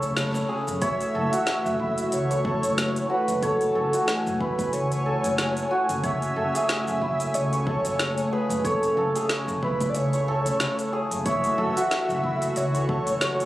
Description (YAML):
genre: organic downtempo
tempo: 92 BPM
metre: 4/4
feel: swing 56% on 16ths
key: unclear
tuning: A4 = 440 Hz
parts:
  - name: breathy flute-like synth lead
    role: melody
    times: 0.0-13.5 s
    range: A4 to E5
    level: -28 LUFS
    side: right 1 dB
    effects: chorus, tremolo, vintage 12-bit sampler grit, ping-pong delay
  - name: warm analog pad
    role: sustained chords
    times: 0.0-13.5 s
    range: C#3 to G#5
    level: -31 LUFS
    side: left 1 dB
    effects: chorus, tremolo, sidechain pumping
  - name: santur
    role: arpeggios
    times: 0.0-13.5 s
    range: E4 to C#5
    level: -27 LUFS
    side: equal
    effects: ping-pong delay
  - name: upright bass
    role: bass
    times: 0.0-13.5 s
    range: F#1 to F#2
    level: -30 LUFS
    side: equal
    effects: none
  - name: deep house drum kit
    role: drums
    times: 0.0-13.5 s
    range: cabasa, hi-hat, snare drum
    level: -30 LUFS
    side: equal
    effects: small room reverb
  - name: cajon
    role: percussion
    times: 0.3-0.8 s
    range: none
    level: -42 LUFS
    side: equal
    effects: none
  - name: electronic kick drum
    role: drums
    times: 0.8-13.0 s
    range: none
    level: -31 LUFS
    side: equal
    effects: small room reverb
room: moderate lush hall reverb, RT60 2.3 s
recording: recorded on a phone in the room, club reverb, compression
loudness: -22 LUFS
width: side -15 dB against mid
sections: 0.8-13.5 A section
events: band accent 0.2-0.5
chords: 0.0 Amaj7/F#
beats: 0.17 | 0.82 1.47 2.12 2.78 | 3.43 4.08 4.73 5.38 | 6.04 6.69 7.34 7.99 | 8.65 9.30 9.95 10.60 | 11.26 11.91 12.56 13.21